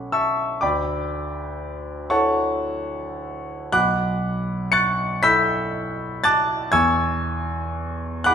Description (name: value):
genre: classical, impressionist solo piano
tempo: 35-41 BPM (dotted quarters)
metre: 6/8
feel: rubato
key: B minor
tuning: A4 = 441 Hz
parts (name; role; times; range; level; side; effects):
- clear concert grand piano; solo; 0.0-8.3 s; B1 to C#7; -20 LUFS; equal; none
room: wet recital hall reverb, RT60 1.5 s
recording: minimal, uncompressed stereo recording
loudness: -19 LUFS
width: side -7 dB against mid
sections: 0.0-8.3 A section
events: none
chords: 0.0 Bm9; 0.6 Dmaj9; 3.7 Bm11; 6.7 E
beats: | 0.61 2.10 | 3.73 5.22 | 6.73 8.26